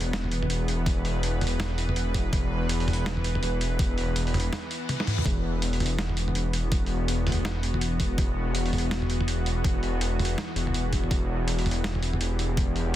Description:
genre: half-time drum and bass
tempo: 164 BPM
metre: 4/4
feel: swing 60% on 16ths, half-time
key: E minor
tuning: A4 = 440 Hz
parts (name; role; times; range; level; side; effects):
- bowed-like drone; sustained chords; 0.0-13.0 s; E3 to B4; -32 LUFS; left 1 dB; built-in reverb, sidechain pumping
- dark detuned saw bass; bass; 0.0-13.0 s; E1; -27 LUFS; equal; none
- boom bap sampler-style drum kit; drums; 0.0-12.8 s; hi-hat, snare drum, toms; -31 LUFS; equal; none
- electronic kick drum; drums; 0.9-12.7 s; none; -26 LUFS; equal; overdrive
- reverse cymbal; sound effects; 4.7-5.3 s; none; -38 LUFS; left 5 dB; none
room: digital ambience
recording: dense, heavily limited modern master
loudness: -24 LUFS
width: side -13 dB against mid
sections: 0.0-13.0 A section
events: break 4.5-5.3; reverse cymbal 4.7-5.3; drum fill 4.9-5.3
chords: 0.0 Emadd9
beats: 0.13 0.50 | 0.86 1.23 1.60 1.96 | 2.33 2.69 3.06 3.42 | 3.79 4.16 4.52 4.89 | 5.25 5.62 5.99 6.35 | 6.72 7.08 7.45 7.82 | 8.18 8.55 8.91 9.28 | 9.64 10.01 10.38 10.74 | 11.11 11.47 11.84 12.21 | 12.57 12.94

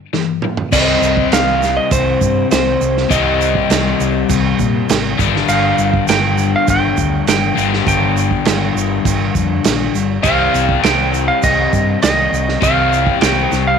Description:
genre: classic rock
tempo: 101 BPM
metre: 4/4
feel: straight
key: C minor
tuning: A4 = 440 Hz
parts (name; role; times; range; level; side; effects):
- crunchy overdriven guitar; riff; 0.0-13.8 s; G2 to C4; -17 LUFS; left 14 dB; none
- vintage drum kit; drums; 0.1-13.6 s; crash cymbal, kick drum, snare drum, toms; -18 LUFS; right 6 dB; none
- clean lap steel guitar; melody; 0.7-13.8 s; C5 to G5; -17 LUFS; right 3 dB; none
- fingered electric bass; bass; 0.7-13.7 s; G1 to Bb2; -20 LUFS; right 1 dB; none
- tube shaker; percussion; 0.7-13.7 s; none; -29 LUFS; right 18 dB; none
room: light reverb, small room ambience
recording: 1960s-style stereo with parts hard left and right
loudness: -12 LUFS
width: side -6 dB against mid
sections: 0.7-13.8 A section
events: break 0.0-0.7; drum fill 0.1-0.7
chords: 0.0 G5; 0.7 Cm; 5.2 G5; 10.2 Cm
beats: 0.13 | 0.72 1.32 1.92 2.51 | 3.11 3.70 4.30 4.89 | 5.49 6.08 6.67 7.27 | 7.87 8.46 9.05 9.65 | 10.24 10.84 11.43 12.03 | 12.62 13.22

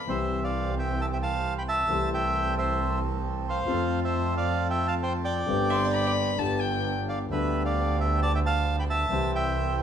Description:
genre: tango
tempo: 133 BPM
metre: 4/4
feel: rubato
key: C major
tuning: A4 = 441 Hz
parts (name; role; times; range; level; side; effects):
- archtop guitar, miked and amplified; second line; 0.0, 5.7-6.9 s; D5 to E5; -32 LUFS; right 1 dB; none
- warm violin; second line; 0.0-0.1, 5.7-7.0 s; G5 to C6; -31 LUFS; left 5 dB; none
- bandoneon; melody; 0.1-9.8 s; B4 to B5; -28 LUFS; right 1 dB; none
- warm concert grand piano; accompaniment; 0.1-9.8 s; G1 to A4; -31 LUFS; left 5 dB; none
- bandoneon; stabs; 0.1-9.8 s; E3 to A4; -35 LUFS; right 6 dB; none
- bright double bass; bass; 0.1-9.8 s; G1 to F2; -29 LUFS; right 2 dB; none
room: moderate large studio reverb, RT60 0.8 s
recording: band playing live in one room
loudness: -24 LUFS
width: side -8 dB against mid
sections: 0.1-9.8 A section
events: none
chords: 0.1 C; 1.9 Am7/C; 3.7 F; 5.5 Gsus4; 6.4 G; 9.1 C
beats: | 0.07 0.53 0.99 1.44 | 1.89 2.34 2.79 3.24 | 3.68 4.13 4.58 5.03 | 5.48 5.93 6.38 6.84 | 7.30 7.76 8.21 8.66 | 9.11 9.56

